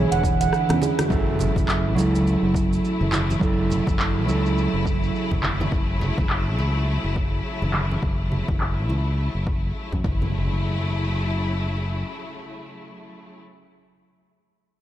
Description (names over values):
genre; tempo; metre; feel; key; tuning
organic downtempo; 104 BPM; 4/4; swing 59% on 16ths; F# minor; A4 = 439 Hz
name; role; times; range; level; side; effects
mellow electric guitar; accompaniment; 0.0-5.7 s; D3 to A4; -24 LUFS; right 2 dB; sidechain pumping, tape echo
clear symphonic string section; sustained chords; 0.0-13.4 s; C#3 to E4; -30 LUFS; left 2 dB; sidechain pumping
fretless electric bass; bass; 0.0-12.0 s; E1 to F#2; -24 LUFS; left 1 dB; sidechain pumping
handpan; arpeggios; 0.1-1.1 s; C#4 to F#5; -27 LUFS; right 8 dB; tape echo
deep house drum kit; drums; 0.1-9.9 s; congas, handclaps, hi-hat, rim click, shaker; -28 LUFS; right 1 dB; overdrive, low-pass filter on hats, small room ambience, low-pass filter on snare, low-pass filter on perc
electronic kick drum; drums; 0.2-10.2 s; none; -26 LUFS; left 1 dB; overdrive, small room ambience
congas and bongos; percussion; 0.2-10.3 s; none; -32 LUFS; right 1 dB; none
impact; sound effects; 1.1-3.4, 10.0-14.1 s; none; -32 LUFS; left 1 dB; none
room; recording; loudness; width
light reverb; dark, warm production; -20 LUFS; side -12 dB against mid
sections
0.0-1.1 A section; 1.1-10.3 B section; 10.3-12.6 C section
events
kick drops out 0.5-1.1; drum fill 0.5-1.1; band accent 1.0; impact 1.1-3.4; filter sweep on drum 1.1-10.3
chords
0.0 E7; 1.1 F#m7